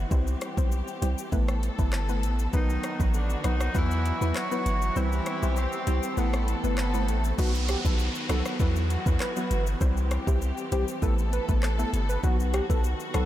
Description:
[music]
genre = dancehall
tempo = 99 BPM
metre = 4/4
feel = straight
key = unclear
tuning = A4 = 440 Hz
[part]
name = dark studio string section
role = sustained chords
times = 0.0-13.3 s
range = D#3 to A4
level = -35 LUFS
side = left 1 dB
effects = none
[part]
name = punchy sub bass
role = bass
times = 0.0-13.3 s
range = G1 to E2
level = -27 LUFS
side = equal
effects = none
[part]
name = soft round pluck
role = accompaniment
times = 0.1-13.3 s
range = F#3 to C5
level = -32 LUFS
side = equal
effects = chorus
[part]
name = afro-pop drum kit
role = drums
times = 0.1-13.3 s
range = crash cymbal, handclaps, hi-hat, kick drum, rim click, shaker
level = -30 LUFS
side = equal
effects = none
[part]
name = warm horn section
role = second line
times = 2.5-7.4 s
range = D3 to F#4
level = -34 LUFS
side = right 1 dB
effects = diffuse ambient delay
[part]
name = swell and downlifter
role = sound effects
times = 5.8-12.2 s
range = none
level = -39 LUFS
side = right 1 dB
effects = none
[part]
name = warm velvety synth lead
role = melody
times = 7.4-13.3 s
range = F#4 to B4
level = -34 LUFS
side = right 1 dB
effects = chorus, diffuse ambient delay
[sound]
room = light reverb, digital ambience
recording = none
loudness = -24 LUFS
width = side -13 dB against mid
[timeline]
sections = 0.0-7.4 A section; 7.4-13.3 B section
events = kick muted 5.0-7.4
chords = 0.1 C; 1.3 Asus2; 2.5 B; 3.7 Esus2; 5.0 C; 6.2 Asus2; 7.4 B; 8.6 Esus2; 9.8 C; 11.0 Asus2; 12.2 B

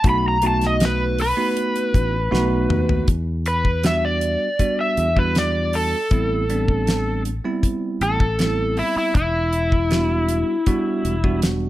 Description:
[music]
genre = straight-eighth soul blues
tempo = 79 BPM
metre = 4/4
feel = straight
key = E minor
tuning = A4 = 441 Hz
[part]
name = overdriven slide guitar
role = melody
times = 0.0-11.4 s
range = E4 to B5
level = -22 LUFS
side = equal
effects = plate reverb
[part]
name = bell-like tine electric piano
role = accompaniment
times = 0.0-11.7 s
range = G3 to F#4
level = -24 LUFS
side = right 2 dB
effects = plate reverb
[part]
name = fingered electric bass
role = bass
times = 0.0-11.7 s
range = E1 to E2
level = -23 LUFS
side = left 1 dB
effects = none
[part]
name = damped 70s drum kit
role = drums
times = 0.0-11.6 s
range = hi-hat, kick drum, snare drum, toms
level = -21 LUFS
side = left 1 dB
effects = none
[sound]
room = light reverb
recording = none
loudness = -18 LUFS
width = side -15 dB against mid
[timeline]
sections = 0.0-3.1 A section; 3.1-11.7 B section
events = electric slide guitar solo 0.0-3.1; drum fill 2.3-3.1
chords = 0.0 B7; 3.1 Em7; 6.1 Am7; 9.2 Em7

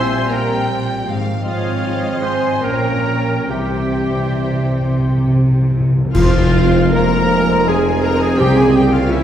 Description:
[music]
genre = classical, slow romantic movement for symphony orchestra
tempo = 66-86 BPM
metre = 3/4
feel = rubato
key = F minor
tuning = A4 = 440 Hz
[part]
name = rich symphonic violin section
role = melody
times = 0.0-9.2 s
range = E5 to C6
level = -29 LUFS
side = left 3 dB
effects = none
[part]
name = clear oboe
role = second line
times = 0.0-9.2 s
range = E4 to C5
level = -27 LUFS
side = right 1 dB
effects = none
[part]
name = flute section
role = second line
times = 0.0-9.2 s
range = Db5 to Bb5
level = -26 LUFS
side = left 2 dB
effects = none
[part]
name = warm clarinet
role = second line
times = 0.0-9.2 s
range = E4 to C5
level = -27 LUFS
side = right 1 dB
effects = none
[part]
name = warm symphonic violin section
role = second line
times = 0.0-9.2 s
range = C5 to Bb5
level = -28 LUFS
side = left 1 dB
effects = none
[part]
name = rich studio viola section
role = accompaniment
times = 0.0-9.2 s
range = E4 to C5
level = -22 LUFS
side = right 1 dB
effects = none
[part]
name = mellow French horn section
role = sustained chords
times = 0.0-9.2 s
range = E3 to C4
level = -26 LUFS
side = left 1 dB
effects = none
[part]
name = mellow trombone section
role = sustained chords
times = 0.0-9.2 s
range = C3 to Db4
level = -25 LUFS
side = right 2 dB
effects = none
[part]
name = concert harp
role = arpeggios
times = 0.0-9.2 s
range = Ab2 to C6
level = -24 LUFS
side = left 3 dB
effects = none
[part]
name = rich symphonic cello section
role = bass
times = 0.0-9.2 s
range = Ab2 to Db4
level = -22 LUFS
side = right 1 dB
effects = none
[part]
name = warm symphonic double bass section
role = bass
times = 0.0-9.2 s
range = Ab1 to F2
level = -26 LUFS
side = right 2 dB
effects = none
[part]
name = timpani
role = percussion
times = 3.5-9.2 s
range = F2 to C3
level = -18 LUFS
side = equal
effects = none
[part]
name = clear tuba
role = bass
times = 6.1-9.2 s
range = F1 to C2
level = -22 LUFS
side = right 1 dB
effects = none
[part]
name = clash cymbals and concert bass drum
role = percussion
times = 6.1-7.6 s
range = none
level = -21 LUFS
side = equal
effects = none
[sound]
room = wet scoring stage reverb, RT60 2.0 s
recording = heard from further back in the room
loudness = -13 LUFS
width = side -10 dB against mid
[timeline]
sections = 0.0-6.1 A section; 6.1-9.2 B section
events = timpani fill 3.5-6.1; band accent 6.1-6.9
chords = 0.0 C7/Bb; 1.1 Fm/Ab; 2.6 Gm7b5/Bb; 3.5 C; 6.1 Fm; 8.4 C7b9

